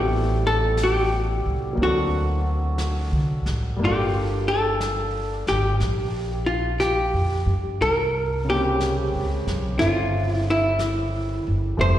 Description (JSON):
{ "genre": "jazz ballad", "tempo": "60 BPM", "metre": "4/4", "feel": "swing 69% on 8ths", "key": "unclear", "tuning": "A4 = 440 Hz", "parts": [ { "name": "archtop guitar, miked and amplified", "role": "melody", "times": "0.0-12.0 s", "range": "E4 to C5", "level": "-23 LUFS", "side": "equal", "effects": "slapback echo" }, { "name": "clear concert grand piano", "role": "accompaniment", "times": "0.0-12.0 s", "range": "Db3 to E5", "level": "-30 LUFS", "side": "right 1 dB", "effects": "slapback echo" }, { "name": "upright bass", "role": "bass", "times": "0.0-12.0 s", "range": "F1 to G2", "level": "-24 LUFS", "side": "equal", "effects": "none" }, { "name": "jazz brush drum kit", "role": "drums", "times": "0.8-12.0 s", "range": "brushed snare drum, hi-hat, snare drum", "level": "-38 LUFS", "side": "equal", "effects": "slapback echo" } ], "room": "light reverb, small room ambience", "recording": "live gig heard through the venue's PA, recital hall reverb", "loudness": "-20 LUFS", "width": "side -12 dB against mid", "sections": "0.0-12.0 A section", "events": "none", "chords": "0.0 Am9; 1.8 D7b13; 3.8 Gm9; 7.8 C7b9" }